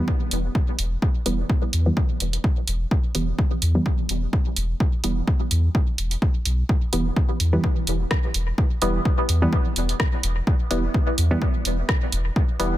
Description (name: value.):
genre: dub techno.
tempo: 127 BPM.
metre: 4/4.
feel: swing 55% on 16ths.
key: E minor.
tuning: A4 = 440 Hz.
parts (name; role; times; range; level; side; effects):
filtered dub chord stab; stabs; 0.0-12.8 s; E3 to B3; -27 LUFS; right 1 dB; chorus, phaser, cassette tape, sidechain pumping, dub echo.
electronic kick drum; drums; 0.1-12.5 s; none; -21 LUFS; equal; none.
pure sine sub bass; bass; 0.3-12.8 s; E1 to E2; -22 LUFS; equal; tube saturation, sidechain pumping.
punchy analog drum machine; drums; 0.3-12.7 s; hi-hat, rim click; -27 LUFS; right 2 dB; soft clipping on snare, dub echo.
room: light reverb.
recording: dense, heavily limited modern master.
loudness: -20 LUFS.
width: side -14 dB against mid.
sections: 0.0-12.8 A section.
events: filter sweep on synth stab 0.0-12.8.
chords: 0.0 Em.